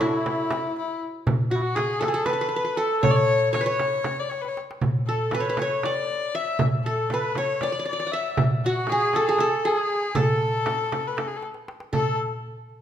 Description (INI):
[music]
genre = Turkish makam ensemble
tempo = 236 BPM (eighths)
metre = 7/8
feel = straight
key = A makam rast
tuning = A4 = 440 Hz
[part]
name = qanun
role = melody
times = 0.0-12.2 s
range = E4 to F#5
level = -25 LUFS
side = right 1 dB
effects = none
[part]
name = clear kamancheh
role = second line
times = 0.0-12.2 s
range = D4 to E5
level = -28 LUFS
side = left 5 dB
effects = none
[part]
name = darbuka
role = percussion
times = 0.0-12.2 s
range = none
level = -30 LUFS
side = left 1 dB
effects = none
[part]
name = frame drum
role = percussion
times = 0.0-12.2 s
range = none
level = -28 LUFS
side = right 3 dB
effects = none
[sound]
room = wet recital hall reverb, RT60 1.4 s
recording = minimal, uncompressed stereo recording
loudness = -22 LUFS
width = side -10 dB against mid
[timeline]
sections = 0.0-11.9 A section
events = drum fill 4.3-4.8, 11.4-11.9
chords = none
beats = 0.00 0.25 0.50 0.76 1.01 | 1.27 1.52 1.77 2.03 2.28 2.54 2.79 | 3.05 3.30 3.55 3.81 4.06 4.32 4.57 | 4.82 5.08 5.33 5.58 5.84 6.09 6.35 | 6.60 6.85 7.11 7.36 7.62 7.87 8.12 | 8.38 8.63 8.88 9.14 9.39 9.64 9.90 | 10.15 10.40 10.66 10.91 11.16 11.42 11.67 | 11.92